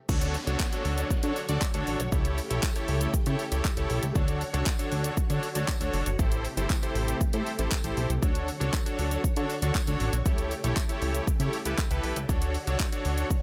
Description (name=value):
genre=dance-pop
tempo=118 BPM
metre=4/4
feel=straight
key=D major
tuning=A4 = 440 Hz
part: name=big bright polysynth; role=accompaniment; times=0.1-13.3 s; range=D4 to D5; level=-35 LUFS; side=equal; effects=sidechain pumping
part: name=string machine, full ensemble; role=sustained chords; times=0.1-13.4 s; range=C3 to C#5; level=-40 LUFS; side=equal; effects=phaser, ensemble chorus, sidechain pumping
part: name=plucky analog bass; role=bass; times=0.1-13.4 s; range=F#1 to D3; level=-32 LUFS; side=equal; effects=sidechain pumping
part: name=pop drum kit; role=drums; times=0.1-13.4 s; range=crash cymbal, handclaps, hi-hat, kick drum, shaker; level=-31 LUFS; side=equal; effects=none
part: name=downlifter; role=sound effects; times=0.1-4.2 s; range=none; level=-46 LUFS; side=equal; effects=none
part: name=tambourine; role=percussion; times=0.6-12.9 s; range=none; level=-44 LUFS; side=equal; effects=none
room=little or no reverb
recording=none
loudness=-28 LUFS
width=mono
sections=0.1-13.4 A section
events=drop 0.1-13.4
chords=0.1 Dmaj7; 2.1 A7; 4.2 Dmaj7; 6.2 Am7; 8.2 Dmaj7; 10.3 A7; 12.3 Dmaj7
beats=| 0.09 0.60 1.10 1.61 | 2.12 2.63 3.14 3.65 | 4.16 4.67 5.17 5.68 | 6.19 6.70 7.21 7.72 | 8.22 8.73 9.24 9.75 | 10.26 10.77 11.28 11.78 | 12.29 12.80 13.31